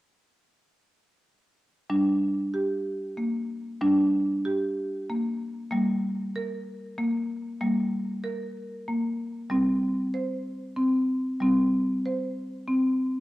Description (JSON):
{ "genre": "world meditative, meditative tuned percussion", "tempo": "63 BPM (dotted quarters)", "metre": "6/8", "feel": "straight", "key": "G minor pentatonic", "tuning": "A4 = 439 Hz", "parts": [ { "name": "marimba with medium hard mallets", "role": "solo", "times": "1.9-13.2 s", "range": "G3 to C5", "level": "-25 LUFS", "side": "equal", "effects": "cassette tape" } ], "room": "wet spring reverb, RT60 1.7 s, small room ambience", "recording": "home recording on cassette", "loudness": "-25 LUFS", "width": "side -17 dB against mid", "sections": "1.9-5.7 A section; 5.7-13.2 B section", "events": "none", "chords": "1.9 Gm; 9.5 Gsus4", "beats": "| 1.90 2.85 | 3.80 4.76 | 5.71 6.66 | 7.61 8.56 | 9.51 10.46 | 11.41 12.36" }